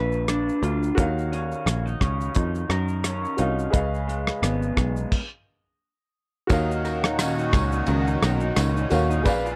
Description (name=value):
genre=indie pop, bedroom pop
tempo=87 BPM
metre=4/4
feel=swing 55% on 16ths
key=Eb minor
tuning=A4 = 438 Hz
part: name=electric guitar through a small old amp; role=accompaniment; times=0.0-9.6 s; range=Bb2 to Cb5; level=-31 LUFS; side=equal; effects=lush chorus, vibrato effect
part: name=warm upright piano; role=accompaniment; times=0.0-9.6 s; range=Gb4 to F5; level=-32 LUFS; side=equal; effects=cassette tape
part: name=picked electric bass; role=bass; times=0.0-9.6 s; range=Ab1 to Gb2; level=-28 LUFS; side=equal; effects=none
part: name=cloth-damped thuddy drum kit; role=drums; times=0.1-9.6 s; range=crash cymbal, hi-hat, kick drum, ride cymbal, rim click, shaker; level=-28 LUFS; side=equal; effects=none
part: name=lush unison pad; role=sustained chords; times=6.9-9.6 s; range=Bb2 to Gb4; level=-31 LUFS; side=equal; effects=chorus, phaser
part: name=tambourine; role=percussion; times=6.5-9.4 s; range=none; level=-42 LUFS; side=equal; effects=none
room=little or no reverb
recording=dry, close 1970s-style studio recording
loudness=-24 LUFS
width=mono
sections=0.0-6.5 A section; 6.5-9.6 B section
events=stop 5.1-6.5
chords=0.0 Bb7b9; 1.0 Ebm7; 3.7 Db7; 6.5 Ebm7